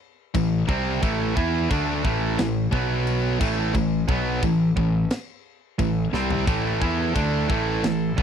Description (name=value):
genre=heavy metal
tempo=88 BPM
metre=4/4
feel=straight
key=A minor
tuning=A4 = 440 Hz
part: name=distorted electric guitar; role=riff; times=0.3-8.2 s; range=A2 to E4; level=-25 LUFS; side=right 11 dB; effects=overdrive
part: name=high-gain distorted guitar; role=riff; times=0.3-8.2 s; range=A2 to E4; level=-26 LUFS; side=left 12 dB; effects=distortion
part: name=fuzz picked electric bass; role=bass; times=0.3-8.2 s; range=A1 to E2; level=-27 LUFS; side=left 1 dB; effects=overdrive
part: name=tight metal drum kit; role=drums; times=0.3-8.2 s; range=crash cymbal, kick drum, snare drum, toms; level=-27 LUFS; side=equal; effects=none
part: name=pipe organ, trumpet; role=sustained chords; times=6.5-8.2 s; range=B3 to C6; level=-35 LUFS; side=equal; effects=none
room=little or no reverb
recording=dry, close 1970s-style studio recording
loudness=-21 LUFS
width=side -8 dB against mid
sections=0.0-8.2 A section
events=drum fill 6.1-6.5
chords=0.0 Am; 2.7 B5; 3.4 Am